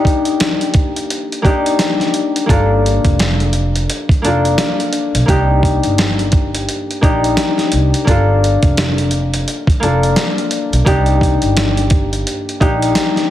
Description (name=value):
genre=hip hop, boom-bap hip-hop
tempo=86 BPM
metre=4/4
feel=swing 59% on 16ths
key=G minor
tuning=A4 = 440 Hz
part: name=concert harp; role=accompaniment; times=0.0-13.3 s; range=Bb3 to A4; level=-16 LUFS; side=left 2 dB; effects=cassette tape, high-pass filter, low-pass filter
part: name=dusty soul sampler-style drum kit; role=drums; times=0.0-13.3 s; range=hi-hat, kick drum, snare drum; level=-16 LUFS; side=right 1 dB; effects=none
part: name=upright bass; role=bass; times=2.5-12.9 s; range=F1 to C2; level=-16 LUFS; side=right 1 dB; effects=none
room=light reverb, small room ambience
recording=heavily compressed radio sound, multiband compression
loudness=-12 LUFS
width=side -12 dB against mid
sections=0.0-13.3 A section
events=break 0.0-2.5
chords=0.0 Ebmaj7/Bb; 2.5 Gm7; 5.3 Cm7; 8.1 Gm7; 10.9 Cm7